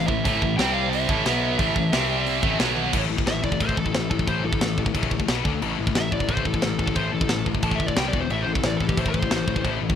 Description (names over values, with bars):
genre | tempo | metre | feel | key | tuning
heavy metal | 179 BPM | 4/4 | straight | A minor | A4 = 437 Hz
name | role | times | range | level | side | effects
high-gain lead guitar | melody | 0.0-9.7 s | G4 to A5 | -29 LUFS | equal | distortion, digital delay
clear symphonic string section | sustained chords | 0.0-2.9 s | C3 to G5 | -39 LUFS | equal | none
heavy high-gain guitar | riff | 0.0-10.0 s | E2 to D4 | -27 LUFS | left 13 dB | distortion
heavy high-gain guitar | riff | 0.0-2.9 s | A2 to C4 | -24 LUFS | right 14 dB | distortion
fuzz picked electric bass | bass | 0.0-9.9 s | E1 to D2 | -28 LUFS | right 1 dB | overdrive
tight metal drum kit | drums | 0.1-10.0 s | crash cymbal, hi-hat, kick drum, snare drum, toms | -25 LUFS | equal | none
room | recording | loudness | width
little or no reverb | rough home demo mix | -20 LUFS | side -9 dB against mid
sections
0.0-2.9 A section; 2.9-10.0 B section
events
drum fill 2.8; lead electric guitar solo 2.9-10.0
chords
0.0 Am; 0.6 C5; 1.1 Am; 1.3 B5; 1.6 Am; 1.9 C5; 2.4 Am; 2.6 B5; 2.9 A5; 5.3 B5; 5.5 D5; 5.6 A5; 8.0 C5; 8.1 E5; 8.3 Am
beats
| 0.26 0.59 0.93 1.26 | 1.59 1.93 2.27 2.60 | 2.94 3.27 3.61 3.94 | 4.28 4.61 4.95 5.29 | 5.62 5.96 6.29 6.63 | 6.96 7.30 7.64 7.97 | 8.31 8.64 8.98 9.31 | 9.65